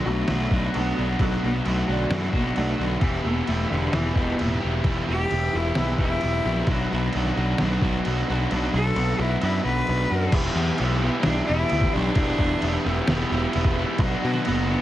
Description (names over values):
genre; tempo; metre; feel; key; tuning
quiet-loud alternative rock; 131 BPM; 4/4; straight; E minor; A4 = 443 Hz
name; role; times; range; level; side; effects
rich cello; melody; 0.0-14.8 s; B2 to B4; -28 LUFS; equal; none
overdriven electric guitar; riff; 0.0-14.8 s; B2 to G4; -26 LUFS; equal; none
electric guitar through a small old amp; arpeggios; 0.1-2.9 s; F#3 to F#4; -30 LUFS; equal; phaser
fuzz picked electric bass; bass; 0.1-14.8 s; E1 to B2; -25 LUFS; equal; overdrive
trip hop sampler-style drum kit; drums; 0.3-14.6 s; crash cymbal, kick drum, snare drum; -28 LUFS; equal; none
room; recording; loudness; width
little or no reverb; heavily compressed radio sound; -21 LUFS; side -13 dB against mid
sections
0.0-10.3 A section; 10.3-14.8 B section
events
cello solo 0.0-10.3; kick and snare drop out 8.5-10.3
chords
0.0 Bm7; 3.0 Em; 6.7 Bm; 10.3 Em7; 14.0 Bm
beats
0.29 0.75 | 1.20 1.66 2.12 2.57 | 3.03 3.48 3.94 4.40 | 4.85 5.31 5.77 6.22 | 6.68 7.14 7.59 8.05 | 8.51 8.96 9.42 9.88 | 10.34 10.79 11.25 11.71 | 12.16 12.62 13.07 13.53 | 13.99 14.45